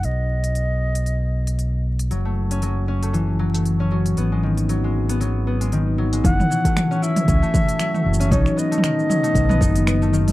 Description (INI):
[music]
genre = folktronica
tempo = 116 BPM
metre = 4/4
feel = swing 56% on 16ths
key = F# dorian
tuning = A4 = 441 Hz
[part]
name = baroque flute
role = melody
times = 0.0-1.9, 6.2-10.1 s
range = C#5 to F#5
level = -25 LUFS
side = right 1 dB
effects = tape echo
[part]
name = concert harp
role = arpeggios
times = 0.0-10.3 s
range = D#3 to E4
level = -21 LUFS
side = left 2 dB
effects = none
[part]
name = overdriven fingered electric bass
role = bass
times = 0.0-10.3 s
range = F#1 to C#2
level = -21 LUFS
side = equal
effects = none
[part]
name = organic electronic drum kit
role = drums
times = 0.0-10.3 s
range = finger snaps, hi-hat, shaker, toms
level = -26 LUFS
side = right 1 dB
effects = small room ambience
[part]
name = electronic kick drum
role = drums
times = 6.2-9.7 s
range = none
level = -20 LUFS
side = equal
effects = small room ambience
[sound]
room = little or no reverb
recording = dry, close 1970s-style studio recording, vinyl crackle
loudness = -18 LUFS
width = side -17 dB against mid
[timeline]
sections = 0.0-6.2 A section; 6.2-10.3 B section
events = none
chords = 0.0 B; 2.1 F#m7; 4.2 G#m7; 6.2 F#m7; 8.3 B7